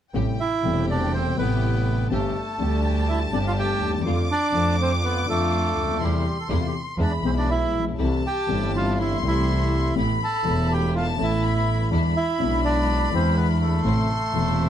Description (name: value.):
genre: tango.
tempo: 123 BPM.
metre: 4/4.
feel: rubato.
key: A minor.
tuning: A4 = 441 Hz.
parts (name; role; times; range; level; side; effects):
rich chamber violin section; second line; 0.1-14.7 s; G5 to D6; -31 LUFS; left 3 dB; none.
dark grand piano; accompaniment; 0.1-14.7 s; E1 to A4; -27 LUFS; left 4 dB; none.
warm studio string section; stabs; 0.1-14.7 s; G#3 to G4; -32 LUFS; right 1 dB; none.
clear double bass; bass; 0.1-14.7 s; E1 to F2; -24 LUFS; right 1 dB; none.
bandoneon; melody; 0.4-14.7 s; G3 to A5; -26 LUFS; right 2 dB; plate reverb.
room: moderate club reverb, RT60 0.6 s.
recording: dark, warm production.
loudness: -20 LUFS.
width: side -10 dB against mid.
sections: 0.1-14.7 A section.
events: none.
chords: 0.1 Am7; 2.1 Gsus2; 4.0 Dm/F; 6.0 Am/E; 7.0 E; 8.0 C6; 10.0 Asus2; 11.9 E7; 13.8 Am.